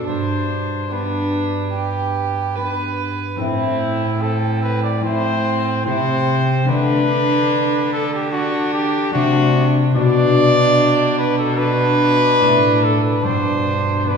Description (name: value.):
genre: classical, renaissance-style consort dance.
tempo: 73 BPM.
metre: 4/4.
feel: straight.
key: A dorian.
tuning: A4 = 441 Hz.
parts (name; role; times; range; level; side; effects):
clear cornet; melody; 0.0-14.2 s; E4 to D5; -20 LUFS; equal; none.
dark violin; second line; 0.0-14.2 s; C4 to B4; -22 LUFS; right 4 dB; none.
concert harp; accompaniment; 0.0-14.2 s; G2 to F#5; -21 LUFS; left 4 dB; none.
rich cello; bass; 0.0-14.2 s; G2 to D3; -22 LUFS; right 1 dB; none.
room: wet recital hall reverb, RT60 1.5 s.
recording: recorded in a church or concert hall.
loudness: -15 LUFS.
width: side -6 dB against mid.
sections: 0.0-3.4 A section; 3.4-14.2 A section.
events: none.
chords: 0.1 G; 3.4 Am; 6.7 D; 10.0 Bm; 13.2 G.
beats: | 0.07 0.91 1.74 2.57 | 3.40 4.22 5.05 5.87 | 6.68 7.50 8.32 9.14 | 9.96 10.78 11.60 12.42 | 13.25 14.08.